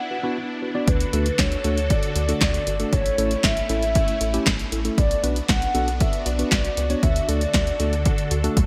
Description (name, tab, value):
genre	synth-pop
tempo	117 BPM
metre	4/4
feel	straight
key	D major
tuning	A4 = 440 Hz
part	hollow clarinet-like synth lead	melody	0.0-8.7 s	B4 to F#5	-29 LUFS	equal	chorus, delay
part	string machine, violas	sustained chords	0.0-8.7 s	D3 to A4	-33 LUFS	equal	phaser, ensemble chorus
part	tine electric piano	accompaniment	0.1-8.6 s	A3 to D5	-30 LUFS	equal	none
part	rubbery square bass	bass	0.9-8.7 s	G1 to D2	-28 LUFS	equal	none
part	punchy analog drum machine	drums	0.9-8.7 s	handclaps, hi-hat, kick drum, snare drum, toms	-24 LUFS	equal	gated reverb
room	light reverb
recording	bright 1980s-style digital production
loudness	-22 LUFS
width	mono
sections	0.0-8.7 A section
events	none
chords	0.0 Bm; 0.9 D; 2.9 A; 5.0 Bm; 7.0 D